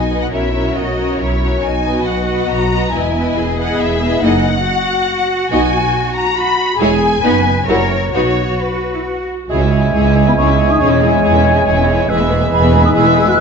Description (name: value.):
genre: classical, dramatic, fast romantic movement for symphony orchestra.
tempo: 139 BPM.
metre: 3/4.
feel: rubato.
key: B major, C# minor from 9.5 s.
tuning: A4 = 439 Hz.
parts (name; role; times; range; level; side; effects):
warm symphonic violin section; melody; 0.0-13.4 s; B4 to B5; -20 LUFS; left 4 dB; none.
warm symphonic violin section; second line; 0.0-13.4 s; E4 to D#5; -22 LUFS; left 2 dB; none.
warm symphonic viola section; accompaniment; 0.0-13.4 s; F#3 to F#4; -20 LUFS; right 1 dB; none.
rich symphonic cello section; bass; 0.0-13.3 s; C#2 to B4; -19 LUFS; right 1 dB; none.
rich symphonic double bass section; bass; 0.0-13.3 s; E1 to C#2; -19 LUFS; right 3 dB; none.
bright clarinet; second line; 9.5-13.4 s; B4 to E5; -22 LUFS; left 2 dB; none.
bright oboe; second line; 9.5-13.4 s; E5 to G#5; -24 LUFS; right 1 dB; none.
clear bassoon; accompaniment; 9.5-13.4 s; G#3; -18 LUFS; right 3 dB; none.
hollow flute section; second line; 9.9-13.4 s; G#5 to F#6; -17 LUFS; equal; none.
mellow French horn section; sustained chords; 9.9-13.3 s; G#3 to F#4; -18 LUFS; left 6 dB; none.
room: moderate scoring stage reverb, RT60 1.8 s.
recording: dark, warm production, nothing above 7.8 kHz.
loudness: -12 LUFS.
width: side -6 dB against mid.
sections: 0.0-9.5 A section; 9.5-13.4 B section.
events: none.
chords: 0.3 F#7/B; 1.6 B; 2.9 Emaj7; 4.2 F#13; 5.5 B; 6.8 C#m/E; 7.2 B/F#; 7.7 F#7b9; 8.1 B; 9.5 C#m; 10.8 C#m/E; 12.1 E.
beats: | 0.33 0.76 1.20 | 1.64 2.07 2.50 | 2.94 3.37 3.80 | 4.23 4.66 5.08 | 5.51 5.95 6.37 | 6.80 7.24 7.68 | 8.14 8.60 9.05 | 9.50 9.94 10.38 | 10.81 11.24 11.67 | 12.10 12.53 12.96 | 13.39.